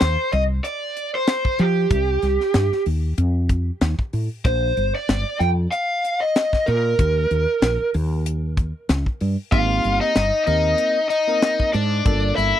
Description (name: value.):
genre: electric jazz fusion.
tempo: 95 BPM.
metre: 4/4.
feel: swing 55% on 16ths.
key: F mixolydian.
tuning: A4 = 440 Hz.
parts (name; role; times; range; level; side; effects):
lead guitar through a small cranked amp; melody; 0.0-12.6 s; G4 to G5; -21 LUFS; equal; overdrive.
woody fretless electric bass; bass; 0.0-12.5 s; G1 to F3; -21 LUFS; equal; wide subtle chorus.
crisp fusion drum kit; drums; 0.0-12.5 s; hi-hat, kick drum, snare drum; -20 LUFS; left 1 dB; none.
cranked stack guitar; second line; 9.5-12.6 s; D4 to F4; -25 LUFS; left 6 dB; overdrive.
bell-like tine electric piano; accompaniment; 9.5-12.6 s; Bb3 to Bb4; -26 LUFS; right 5 dB; phaser.
room: little or no reverb.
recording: dry, close 1970s-style studio recording.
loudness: -18 LUFS.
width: side -11 dB against mid.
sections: 0.0-12.6 A section.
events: none.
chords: 0.0 F5; 1.9 Cm; 3.2 N.C.; 4.4 Bb5; 7.0 Eb5; 9.5 Abmaj9; 12.1 Gm7.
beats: 0.01 0.65 1.28 | 1.91 2.55 3.18 3.81 | 4.45 5.08 5.72 6.35 | 6.99 7.62 8.25 8.89 | 9.52 10.16 10.79 11.43 | 12.06.